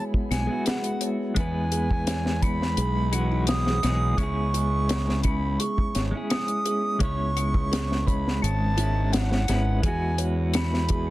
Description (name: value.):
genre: trip hop.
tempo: 85 BPM.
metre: 4/4.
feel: straight.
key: C# minor.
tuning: A4 = 440 Hz.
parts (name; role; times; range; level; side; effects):
bright reedy baroque flute; melody; 0.0-11.1 s; F#5 to D#6; -30 LUFS; right 1 dB; tape echo.
clean electric guitar; accompaniment; 0.0-11.1 s; E3 to C#5; -29 LUFS; left 1 dB; tremolo, vintage 12-bit sampler grit, tape echo.
music box; arpeggios; 0.0-11.1 s; C#4 to C#5; -36 LUFS; right 1 dB; tape echo.
wind-like tuned noise texture; texture; 0.1-11.1 s; B3; -40 LUFS; right 3 dB; none.
deep reggae drum kit; drums; 0.1-11.1 s; hi-hat, kick drum, snare drum; -27 LUFS; equal; none.
fuzz fingered electric bass; bass; 0.3-11.1 s; G#1 to E2; -26 LUFS; equal; overdrive.
room: small room reverb.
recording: dense, heavily limited modern master.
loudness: -22 LUFS.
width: side -16 dB against mid.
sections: 0.0-11.1 A section.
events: none.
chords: 0.0 Eadd9; 4.2 C#m; 9.8 Eadd9.